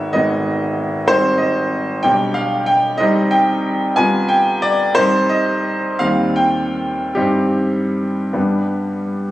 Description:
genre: classical, romantic character piece for solo piano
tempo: 50-64 BPM (dotted quarters)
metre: 6/8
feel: rubato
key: C minor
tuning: A4 = 442 Hz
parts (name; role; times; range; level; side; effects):
- clear grand piano; solo; 0.0-9.3 s; G#1 to Ab5; -15 LUFS; equal; none
room: moderate concert hall reverb, RT60 2.1 s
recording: recorded on a phone in the room, studio ambience, compression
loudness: -15 LUFS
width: side -15 dB against mid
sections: 0.0-9.3 A section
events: none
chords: 0.0 G#m; 1.1 Abmaj7; 2.0 G/B; 3.0 Cm; 4.0 G7/C; 5.0 Cm; 6.0 Cm/Eb; 7.2 Cm/G; 8.3 G

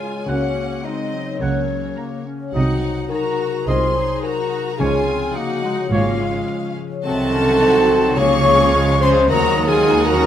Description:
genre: classical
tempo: 106 BPM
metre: 4/4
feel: rubato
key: Db major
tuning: A4 = 440 Hz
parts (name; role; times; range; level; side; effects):
- rich studio violin section; melody; 0.0-10.3 s; Eb5 to Bb5; -32 LUFS; left 2 dB; none
- bright silver concert flute; second line; 0.0-10.3 s; Db5 to Db6; -25 LUFS; left 2 dB; none
- clear studio violin section; second line; 0.0-10.3 s; Db5 to Db6; -30 LUFS; left 3 dB; none
- mellow clarinet; second line; 0.0-10.3 s; Gb3 to Gb4; -27 LUFS; left 2 dB; none
- clear symphonic viola section; accompaniment; 0.0-10.3 s; Bb3 to Ab4; -28 LUFS; right 1 dB; none
- mellow French horn section; sustained chords; 0.0-10.3 s; Db4 to Db5; -20 LUFS; left 1 dB; none
- concert harp; arpeggios; 0.0-10.3 s; C3 to Bb4; -27 LUFS; left 8 dB; none
- warm trombone section; sustained chords; 0.3-10.3 s; Db3 to Bb3; -30 LUFS; right 5 dB; none
- mellow trumpet; stabs; 0.3-10.3 s; C5 to Gb5; -28 LUFS; right 2 dB; none
- rich studio cello section; bass; 0.3-10.3 s; Eb2 to Db3; -23 LUFS; right 2 dB; none
- rich symphonic double bass section; bass; 0.3-10.3 s; Ab1 to Eb2; -24 LUFS; right 3 dB; none
- timpani; percussion; 8.2-9.0 s; none; barely audible; none; none
room: moderate scoring stage reverb, RT60 1.8 s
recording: none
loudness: -16 LUFS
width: side -10 dB against mid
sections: 0.0-10.3 A section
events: none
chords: 0.3 Gb/Db; 2.5 Ab7/C; 4.8 Db; 7.0 Cdim7; 8.2 Db; 9.3 Ab7(no3)/Eb

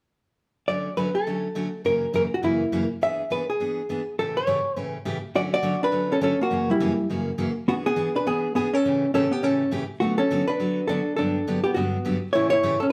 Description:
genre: country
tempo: 206 BPM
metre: 4/4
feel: swing 62% on 8ths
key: D major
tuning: A4 = 440 Hz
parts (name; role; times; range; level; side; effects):
- hollow-body jazz guitar; melody; 0.7-12.9 s; G3 to E5; -25 LUFS; equal; none
- picked steel-string acoustic guitar; accompaniment; 0.7-12.8 s; F#2 to A4; -31 LUFS; equal; none
room: wet studio reverb, RT60 0.7 s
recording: band playing live in one room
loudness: -24 LUFS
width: mono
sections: 0.7-5.4 A section; 5.4-12.9 B section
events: none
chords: 0.7 Dmaj7; 1.9 F#7; 3.0 E7; 4.2 A7; 5.4 Dmaj7; 6.5 F#7; 7.7 E7; 8.8 A7; 10.0 D6; 11.2 Gmaj7; 12.3 A7

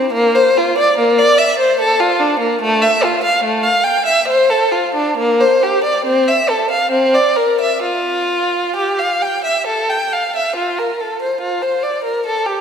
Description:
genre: classical, baroque-style suite movement for unaccompanied violin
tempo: 64-74 BPM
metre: 3/4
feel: rubato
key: F major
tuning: A4 = 443 Hz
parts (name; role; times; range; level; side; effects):
- rich violin; solo; 0.0-12.6 s; A3 to G5; -13 LUFS; equal; none
room: wet church reverb, RT60 2.8 s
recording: minimal, uncompressed stereo recording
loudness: -13 LUFS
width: side -7 dB against mid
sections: 0.0-10.6 A section; 10.6-12.6 A section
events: none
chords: none

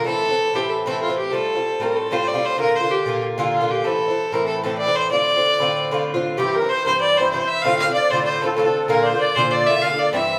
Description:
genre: celtic folk, Celtic reel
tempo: 190 BPM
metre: 4/4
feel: swing 54% on 8ths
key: unclear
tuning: A4 = 440 Hz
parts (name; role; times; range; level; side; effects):
- rich fiddle; melody; 0.0-10.4 s; F4 to F5; -22 LUFS; equal; none
- Irish bouzouki; accompaniment; 0.0-10.4 s; G2 to F4; -25 LUFS; equal; none
- musette accordion; second line; 6.4-10.4 s; G4 to F5; -25 LUFS; equal; none
room: wet large studio reverb, RT60 1.1 s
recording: band playing live in one room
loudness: -20 LUFS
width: mono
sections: 0.0-6.4 A section; 6.4-10.4 B section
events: none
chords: 0.1 Am; 1.3 Fadd9; 2.6 Bb; 3.9 Am; 5.1 Dm7; 6.4 C; 7.6 F6; 8.9 Bb

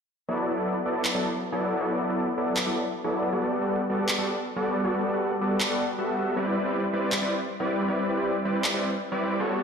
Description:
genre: future bass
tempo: 158 BPM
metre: 4/4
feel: half-time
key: D major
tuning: A4 = 442 Hz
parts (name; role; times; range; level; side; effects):
- supersaw chords; riff; 0.3-9.6 s; F#3 to E5; -25 LUFS; equal; low-pass filter, digital delay
- electronic handclaps; drums; 1.0-8.7 s; none; -28 LUFS; right 1 dB; studio reverb
room: wet lush hall reverb, RT60 2.4 s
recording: played on a big sound system in a bare room, stone room reverb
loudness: -24 LUFS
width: side -6 dB against mid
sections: 0.3-9.6 A section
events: none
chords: 0.3 D69; 3.3 Gmaj9; 6.4 Cmaj9

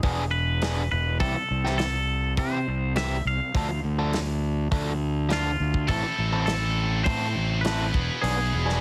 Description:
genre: indie rock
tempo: 102 BPM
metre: 4/4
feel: straight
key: A minor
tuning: A4 = 440 Hz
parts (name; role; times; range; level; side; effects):
- twangy electric guitar; melody; 0.0-8.8 s; F4 to F5; -32 LUFS; equal; none
- biting overdriven guitar; riff; 0.0-8.8 s; E3 to A4; -33 LUFS; equal; none
- fuzz fingered electric bass; bass; 0.0-8.8 s; E1 to C3; -29 LUFS; equal; overdrive
- loose indie drum kit; drums; 0.0-8.8 s; hi-hat, kick drum, snare drum; -32 LUFS; equal; none
- scooped high-gain guitar; riff; 5.9-8.8 s; B3 to A4; -33 LUFS; equal; distortion, subtle chorus, analog delay
room: light reverb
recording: heavily compressed radio sound, multiband compression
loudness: -26 LUFS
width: mono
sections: 0.0-8.8 A section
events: none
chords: 0.0 E7; 1.2 C6; 3.5 Dm; 5.9 Am; 7.9 E7

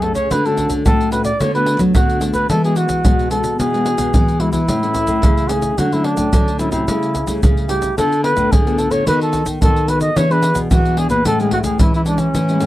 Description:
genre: samba and choro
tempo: 110 BPM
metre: 4/4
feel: straight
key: A major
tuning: A4 = 437 Hz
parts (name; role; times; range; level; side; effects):
- breathy trumpet; melody; 0.0-12.7 s; C#4 to D#5; -19 LUFS; equal; none
- nylon-string guitar; accompaniment; 0.0-12.7 s; A2 to A4; -22 LUFS; left 2 dB; none
- nylon-string guitar; bass; 0.0-12.7 s; F#2 to F#3; -19 LUFS; equal; none
- pandeiro, tube shaker and surdo; percussion; 0.0-12.7 s; none; -18 LUFS; equal; none
room: light reverb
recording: dry, close 1970s-style studio recording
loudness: -14 LUFS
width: side -15 dB against mid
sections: 0.0-12.7 A section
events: none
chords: 0.3 Dmaj7; 1.4 Bm7/D; 2.5 Eadd9; 4.7 A; 5.8 Dmaj7; 6.9 A7/C#; 8.0 Dm6; 9.1 B7/D#; 10.2 E7; 11.3 Amaj7

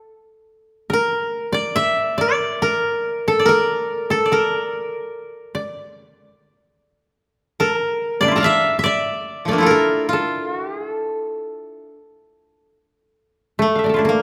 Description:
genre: japanese traditional, Japanese chamber music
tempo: 71 BPM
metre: 4/4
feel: uneven beats, rubato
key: A miyako bushi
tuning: A4 = 440 Hz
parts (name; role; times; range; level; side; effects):
- koto; melody; 0.0-14.2 s; F3 to Bb5; -20 LUFS; equal; none
- koto; second line; 0.0-14.2 s; A3 to F5; -26 LUFS; equal; none
room: moderate recital hall reverb, RT60 1.8 s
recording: none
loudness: -20 LUFS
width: mono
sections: 0.0-13.6 A section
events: none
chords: none

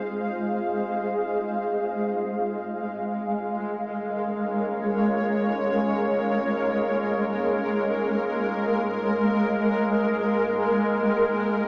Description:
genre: ambient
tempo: free time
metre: none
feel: none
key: unclear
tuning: A4 = 440 Hz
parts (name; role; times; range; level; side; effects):
- granular cloud pad; sustained chords; 0.0-11.7 s; Ab3 to G5; -25 LUFS; equal; built-in reverb
- deep rumbling drone; bass; 0.7-11.7 s; Ab1; -59 LUFS; equal; none
room: wet concert hall reverb, RT60 2.0 s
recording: small speaker sound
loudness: -25 LUFS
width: mono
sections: 0.0-11.7 A section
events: none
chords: 0.0 Dbmaj7/Ab (rootless); 2.1 Eb7sus4/Ab; 9.1 Abmaj7(no3)

